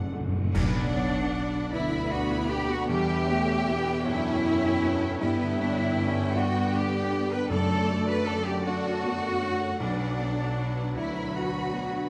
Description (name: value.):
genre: cinematic, emotional film score for orchestra.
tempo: 52 BPM (dotted quarters).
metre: 6/8.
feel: rubato.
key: B minor.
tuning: A4 = 439 Hz.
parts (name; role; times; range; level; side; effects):
warm symphonic violin section; melody; 0.0-12.1 s; D5 to B5; -41 LUFS; equal; none.
large flute ensemble; second line; 0.0-12.1 s; D5 to B5; -40 LUFS; equal; none.
clear baby grand piano; accompaniment; 0.0-12.1 s; B1 to F#6; -38 LUFS; equal; none.
warm chamber viola section; accompaniment; 0.0-12.1 s; F#3 to A4; -37 LUFS; equal; none.
mellow French horn section; sustained chords; 0.0-12.1 s; D3 to D4; -36 LUFS; equal; none.
concert harp; arpeggios; 0.0-12.1 s; E2 to B5; -40 LUFS; equal; none.
clear symphonic double bass section; bass; 0.0-12.1 s; F#1 to G2; -35 LUFS; equal; none.
rich symphonic cello section; bass; 0.0-12.1 s; F#2 to B4; -34 LUFS; equal; none.
timpani; percussion; 0.0-0.5, 7.5-10.9 s; F#2 to B2; -34 LUFS; equal; none.
warm clarinet; second line; 0.5-12.1 s; D4 to B4; -38 LUFS; equal; none.
warm symphonic violin section; second line; 0.5-12.1 s; G4 to E5; -42 LUFS; equal; none.
clash cymbals and concert bass drum; percussion; 0.5-2.1 s; none; -36 LUFS; equal; none.
room: moderate scoring stage reverb, RT60 1.6 s.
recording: none.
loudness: -27 LUFS.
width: mono.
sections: 0.5-12.1 A section.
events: timpani fill 0.0-0.5; band accent 0.5-1.3.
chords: 0.0 D/F#; 0.5 Bm; 2.9 Em7; 5.2 G6; 7.5 D/F#; 9.8 Bm.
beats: | 0.54 1.72 | 2.89 4.06 | 5.21 6.36 | 7.50 8.65 | 9.80 10.96.